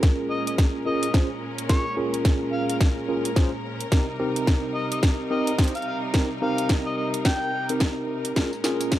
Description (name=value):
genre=glitch hop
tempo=108 BPM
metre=4/4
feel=swing 60% on 16ths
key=Bb dorian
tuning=A4 = 438 Hz
part: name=bright symphonic string section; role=sustained chords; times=0.0-9.0 s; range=Bb2 to Bb4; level=-32 LUFS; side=equal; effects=vintage 12-bit sampler grit, sidechain pumping
part: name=bright tine electric piano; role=stabs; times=0.0-9.0 s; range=C4 to C5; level=-27 LUFS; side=right 1 dB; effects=medium stereo tremolo, sidechain pumping, low-pass filter, tape echo
part: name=drum and bass drum kit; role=drums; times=0.0-9.0 s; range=hi-hat, snare drum, tambourine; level=-28 LUFS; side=equal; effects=overdrive
part: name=electronic kick drum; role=drums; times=0.0-9.0 s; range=none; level=-20 LUFS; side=equal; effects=overdrive
part: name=overdriven harmonica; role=melody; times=0.3-7.7 s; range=Db5 to G5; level=-30 LUFS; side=left 2 dB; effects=tape echo
room=light reverb, digital ambience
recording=dark, warm production, high-pass filter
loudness=-22 LUFS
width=side -13 dB against mid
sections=0.0-9.0 A section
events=build-up 0.0-9.0; drum fill 0.0-9.0; filter sweep on tine electric piano 0.0-9.0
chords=0.0 Bbm7; 3.9 Cm7; 8.4 Bbm7